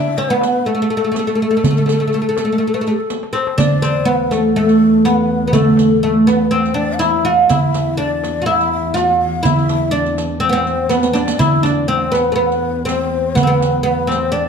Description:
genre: Arabic maqam ensemble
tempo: 123 BPM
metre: 4/4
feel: straight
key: A maqam rast, E maqam bayati from 3.6 s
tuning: A4 = 440 Hz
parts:
  - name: oud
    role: melody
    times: 0.0-14.5 s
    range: A3 to F#4-50c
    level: -15 LUFS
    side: right 1 dB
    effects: none
  - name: breathy low ney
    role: second line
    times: 0.0-14.5 s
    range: G4+42c to F#5-42c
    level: -22 LUFS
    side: left 7 dB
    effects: none
  - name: darbuka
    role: percussion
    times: 0.2-14.4 s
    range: none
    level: -19 LUFS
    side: right 2 dB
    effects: none
  - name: riq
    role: percussion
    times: 0.2-14.2 s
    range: none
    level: -25 LUFS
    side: right 7 dB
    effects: none
  - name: dark double bass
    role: drone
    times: 3.6-14.5 s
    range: E2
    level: -24 LUFS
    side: right 1 dB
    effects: none
room: moderate recital hall reverb, RT60 1.3 s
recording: dark, warm production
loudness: -13 LUFS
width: side -6 dB against mid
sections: 0.0-3.6 A section; 3.6-14.5 B section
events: drum fill 3.1-3.6, 10.9-11.4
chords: none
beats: 0.18 0.67 1.15 | 1.64 2.13 2.62 3.10 | 3.59 4.08 4.57 5.06 | 5.54 6.03 6.52 7.01 | 7.50 7.99 8.47 8.96 | 9.45 9.94 10.43 10.92 | 11.41 11.90 12.38 12.88 | 13.36 13.85 14.34

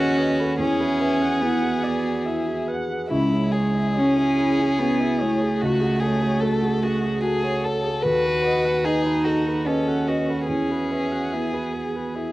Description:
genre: neoclassical piano and strings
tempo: 72 BPM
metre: 3/4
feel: rubato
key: unclear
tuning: A4 = 439 Hz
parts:
  - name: rich violin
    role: melody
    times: 0.0-12.3 s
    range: E4 to B4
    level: -26 LUFS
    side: left 2 dB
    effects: cassette tape
  - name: warm cello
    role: second line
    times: 0.0-12.2 s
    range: G#3 to F#4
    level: -23 LUFS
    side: right 2 dB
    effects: cassette tape, plate reverb
  - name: dark concert grand piano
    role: accompaniment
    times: 0.0-12.3 s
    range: C#2 to C#5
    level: -27 LUFS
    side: right 2 dB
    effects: cassette tape
  - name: dark viola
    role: accompaniment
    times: 0.0-12.3 s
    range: E4 to F#5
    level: -32 LUFS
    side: right 1 dB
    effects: cassette tape
  - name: vibraphone with medium hard mallets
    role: arpeggios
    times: 0.0-12.3 s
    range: C#4 to A5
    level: -29 LUFS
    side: left 2 dB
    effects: cassette tape
room: wet booth ambience, RT60 0.2 s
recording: home recording on cassette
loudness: -20 LUFS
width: side -17 dB against mid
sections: 0.0-12.3 A section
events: none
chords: 0.0 B7/D#; 0.6 Eadd9; 3.1 C#m; 5.6 F#madd9/C#; 8.0 B7/D#; 10.5 Eadd9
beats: | 0.59 1.42 2.26 | 3.11 3.96 4.79 | 5.60 6.41 7.22 | 8.03 8.84 9.65 | 10.47 11.31 12.15

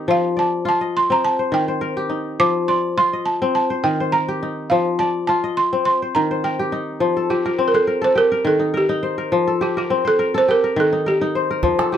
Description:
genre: west african traditional, West African string and xylophone music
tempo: 104 BPM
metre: 4/4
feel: swing 54% on 16ths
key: F mixolydian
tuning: A4 = 440 Hz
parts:
  - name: kora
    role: arpeggios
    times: 0.0-12.0 s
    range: Eb3 to Eb5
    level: -20 LUFS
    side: left 3 dB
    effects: none
  - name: balafon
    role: melody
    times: 0.1-12.0 s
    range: F4 to D6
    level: -19 LUFS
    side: right 2 dB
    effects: none
  - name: calabash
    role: percussion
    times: 11.6-11.9 s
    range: none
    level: -23 LUFS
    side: right 4 dB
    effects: none
room: light reverb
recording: none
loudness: -17 LUFS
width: side -9 dB against mid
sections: 0.0-7.0 A section; 7.0-12.0 B section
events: none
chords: 0.1 F5; 1.2 Eb; 2.4 F5; 3.6 Eb; 4.7 F5; 5.9 Eb; 7.0 F; 8.2 Eb; 9.3 F; 10.5 Eb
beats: | 0.08 0.66 1.24 1.82 | 2.40 2.98 3.55 4.13 | 4.71 5.29 5.86 6.44 | 7.02 7.59 8.17 8.75 | 9.33 9.90 10.48 11.06 | 11.63

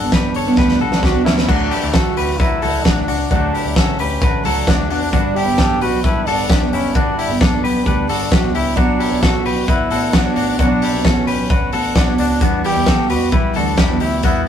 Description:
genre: jangly indie pop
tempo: 132 BPM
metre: 4/4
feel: straight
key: unclear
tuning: A4 = 439 Hz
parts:
  - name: bright trombone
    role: melody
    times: 0.0-14.5 s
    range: B3 to G4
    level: -22 LUFS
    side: equal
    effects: none
  - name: picked steel-string acoustic guitar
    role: accompaniment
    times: 0.0-14.5 s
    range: G2 to C#5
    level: -20 LUFS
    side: right 2 dB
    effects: none
  - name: direct-recorded clean electric guitar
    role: arpeggios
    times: 0.0-14.5 s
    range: B3 to C#5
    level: -22 LUFS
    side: left 4 dB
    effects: none
  - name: vintage muted fingered electric bass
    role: bass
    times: 0.0-14.4 s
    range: F#1 to E3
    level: -25 LUFS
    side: left 1 dB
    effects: none
  - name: loose indie drum kit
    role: drums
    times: 0.1-14.3 s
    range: crash cymbal, hi-hat, kick drum, snare drum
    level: -17 LUFS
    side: equal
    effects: none
room: moderate small room reverb, RT60 0.5 s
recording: rough rehearsal-room recording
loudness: -14 LUFS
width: side -9 dB against mid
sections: 0.0-1.5 A section; 1.5-14.5 B section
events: drum fill 0.6-1.5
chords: 0.0 G; 1.5 D; 5.1 Bmadd9; 12.4 Emadd9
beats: 0.13 0.59 1.04 | 1.50 1.95 2.40 2.86 | 3.31 3.77 4.22 4.68 | 5.13 5.59 6.04 6.50 | 6.95 7.41 7.86 8.32 | 8.77 9.23 9.68 10.14 | 10.60 11.05 11.51 11.96 | 12.42 12.87 13.33 13.79 | 14.24

